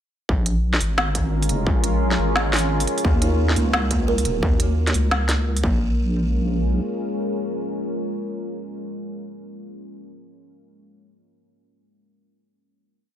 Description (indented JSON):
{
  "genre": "half-time drum and bass",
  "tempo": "174 BPM",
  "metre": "4/4",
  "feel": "swing 59% on 16ths, half-time",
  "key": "Bb minor",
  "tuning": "A4 = 441 Hz",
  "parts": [
    { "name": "deep dark ambient pad", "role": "sustained chords", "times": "0.9-8.8 s", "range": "Ab3 to Bb4", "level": "-27 LUFS", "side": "left 1 dB", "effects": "chorus, built-in reverb, sidechain pumping" },
    { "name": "deep soft wobble bass", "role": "bass", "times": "0.3-6.8 s", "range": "Eb1 to Eb2", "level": "-21 LUFS", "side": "equal", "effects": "chorus" },
    { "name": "electronic kick drum", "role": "drums", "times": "0.3-5.7 s", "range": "none", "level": "-22 LUFS", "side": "equal", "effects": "distortion, studio reverb" },
    { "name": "organic electronic drum kit", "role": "drums", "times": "0.5-5.6 s", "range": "hi-hat, snare drum", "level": "-23 LUFS", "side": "equal", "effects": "studio reverb" },
    { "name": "buzzing kalimba", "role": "arpeggios", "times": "3.0-6.0 s", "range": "Bb3 to Bb4", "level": "-28 LUFS", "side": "right 1 dB", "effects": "dub echo" }
  ],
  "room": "light reverb",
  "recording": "none",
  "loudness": "-19 LUFS",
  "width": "side -10 dB against mid",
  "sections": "0.3-5.8 drop; 5.8-8.6 final hit",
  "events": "drop 0.3-5.8",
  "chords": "0.3 Bbm7; 3.0 Ebm; 5.6 Bbm7",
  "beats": "| 0.29 0.64 0.98 1.32 | 1.67 2.02 2.36 2.70 | 3.05 3.39 3.74 4.08 | 4.43 4.77 5.12 5.46 | 5.81 6.15 6.50 6.84 | 7.19 7.53 7.88 8.22"
}